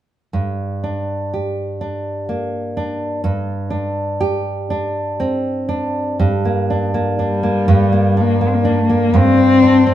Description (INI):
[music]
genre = celtic folk, Celtic slow air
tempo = 61 BPM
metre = 3/4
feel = rubato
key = G minor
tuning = A4 = 443 Hz
[part]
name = nylon-string guitar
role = accompaniment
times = 0.3-9.9 s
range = G2 to G4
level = -17 LUFS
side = right 1 dB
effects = none
[part]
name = dark cello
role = melody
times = 7.2-9.9 s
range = G3 to C4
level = -14 LUFS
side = left 3 dB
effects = none
[sound]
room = moderate studio reverb, RT60 0.8 s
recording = band playing live in one room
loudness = -15 LUFS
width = side -12 dB against mid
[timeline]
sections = 0.3-6.2 A section; 6.2-9.9 B section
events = none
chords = 0.3 Gm; 3.2 Csus2/G